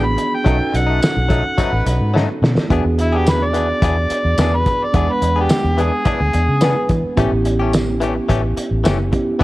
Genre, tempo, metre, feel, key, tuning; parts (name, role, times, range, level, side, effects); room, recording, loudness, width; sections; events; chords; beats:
straight-eighth soul blues; 107 BPM; 4/4; straight; E mixolydian; A4 = 438 Hz
overdriven harmonica; melody; 0.0-6.9 s; E4 to B5; -20 LUFS; equal
mellow tine electric piano; accompaniment; 0.0-9.4 s; G#3 to F#5; -22 LUFS; right 2 dB
direct-recorded clean electric guitar; stabs; 0.0-9.4 s; E3 to G#4; -24 LUFS; left 5 dB
vintage muted fingered electric bass; bass; 0.0-9.4 s; F#1 to E3; -19 LUFS; equal
cloth-damped thuddy drum kit; drums; 0.2-9.4 s; hi-hat, kick drum, snare drum, tambourine; -20 LUFS; equal
bright horn section; sustained chords; 0.5-2.1 s; B3 to B4; -31 LUFS; equal
small room ambience; -14 LUFS; side -17 dB against mid
0.0-2.7 A section; 2.7-9.4 B section
harmonica solo 0.0-2.7; drum fill 2.1-2.7; tine electric piano fill 6.3-7.2
0.5 B7; 2.7 E7; 7.2 A7
| 0.46 1.02 1.58 2.14 | 2.70 3.26 3.82 4.38 | 4.94 5.50 6.06 6.62 | 7.18 7.74 8.30 8.86 | 9.41